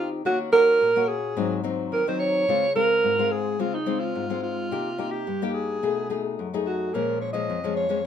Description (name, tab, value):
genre	samba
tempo	108 BPM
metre	4/4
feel	straight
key	unclear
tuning	A4 = 439 Hz
part	breathy alto saxophone	melody	0.0-8.1 s	Eb4 to Eb5	-23 LUFS	right 2 dB	none
part	nylon-string guitar	accompaniment	0.0-8.0 s	F2 to G#4	-27 LUFS	left 6 dB	none
room	moderate studio reverb, RT60 0.5 s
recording	minimal, uncompressed stereo recording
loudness	-22 LUFS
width	side -9 dB against mid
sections	0.0-8.1 A section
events	none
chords	0.2 Ebm7; 1.4 Ab7; 2.5 Dbmaj7; 4.7 Cm7; 5.8 B6; 6.9 Bbm7